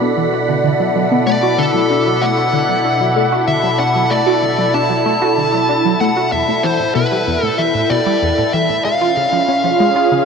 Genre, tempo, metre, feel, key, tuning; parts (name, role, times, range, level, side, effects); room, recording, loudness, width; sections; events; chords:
ambient, sequencer-driven space music; 95 BPM; 4/4; straight; A4 = 440 Hz
phased analog pad; sustained chords; 0.0-10.2 s; B2 to G5; -17 LUFS; equal; phaser, chorus
tight sequenced synth; riff; 0.0-10.2 s; E2 to F#4; -19 LUFS; equal; chorus, phaser, tape echo
wind-like tuned noise texture; texture; 0.0-10.2 s; B5; -29 LUFS; right 5 dB; built-in reverb
smooth overdriven lead guitar; melody; 1.3-10.2 s; A4 to A5; -16 LUFS; equal; tape echo
wet huge ambient reverb, RT60 8.2 s; cassette tape, faint mains hum; -13 LUFS; side -6 dB against mid
0.0-10.2 A section
0.0 Bm7; 6.3 Em; 8.9 C#7